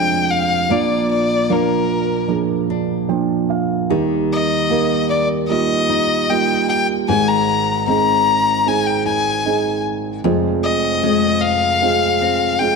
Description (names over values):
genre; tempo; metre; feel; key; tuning
pop ballad; 76 BPM; 4/4; straight; Eb major; A4 = 444 Hz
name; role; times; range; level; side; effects
clear violin; melody; 0.0-12.8 s; Bb4 to Bb5; -18 LUFS; left 5 dB; none
felt-muted upright piano; accompaniment; 0.0-12.8 s; F1 to G5; -19 LUFS; right 9 dB; none
nylon-string guitar; arpeggios; 0.0-12.8 s; F2 to Eb4; -23 LUFS; left 10 dB; none
room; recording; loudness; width
wet echo chamber reverb, RT60 1.5 s; 1960s-style stereo with parts hard left and right; -15 LUFS; side -4 dB against mid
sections
0.0-12.8 A section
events
felt piano fill 2.7-3.9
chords
0.0 Fm; 0.7 Bb; 3.9 Eb; 7.1 Ab; 10.2 Fm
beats
| 0.69 1.49 2.29 3.09 | 3.90 4.69 5.49 6.29 | 7.08 7.88 8.66 9.45 | 10.24 11.03 11.82 12.62